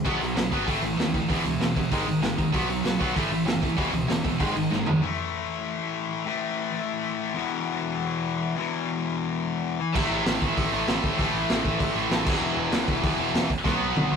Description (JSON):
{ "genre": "punk rock", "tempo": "194 BPM", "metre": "4/4", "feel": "straight", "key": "unclear", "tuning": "A4 = 440 Hz", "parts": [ { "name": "distorted electric guitar", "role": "riff", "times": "0.0-14.2 s", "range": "E2 to B3", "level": "-27 LUFS", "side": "left 6 dB", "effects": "overdrive" }, { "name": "heavy high-gain guitar", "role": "riff", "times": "0.0-5.0, 9.9-14.2 s", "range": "E2 to B3", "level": "-32 LUFS", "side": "equal", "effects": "distortion" }, { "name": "tight distorted guitar", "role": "riff", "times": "0.0-5.0, 9.9-14.2 s", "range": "E2 to B3", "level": "-28 LUFS", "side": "right 8 dB", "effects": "distortion" }, { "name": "growling picked electric bass", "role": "bass", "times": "0.0-5.0, 10.0-14.2 s", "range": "E1 to D#2", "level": "-33 LUFS", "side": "right 1 dB", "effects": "overdrive" }, { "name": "raw garage drum kit", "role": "drums", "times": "0.1-4.9, 10.0-14.0 s", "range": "crash cymbal, hi-hat, kick drum, snare drum, toms", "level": "-27 LUFS", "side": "equal", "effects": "none" } ], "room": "light reverb", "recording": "rough rehearsal-room recording, warm saturation", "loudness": "-23 LUFS", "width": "side -6 dB against mid", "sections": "0.0-5.0 A section; 5.0-14.2 B section", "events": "drum fill 4.7-5.0, 13.7-14.2", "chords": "0.1 B5; 0.7 A5; 1.3 E5; 1.9 G#5; 2.5 B5; 3.2 A5; 3.8 E5; 4.4 G#5; 5.0 A5; 7.3 E5; 10.0 A5; 12.3 E5; 13.7 B5" }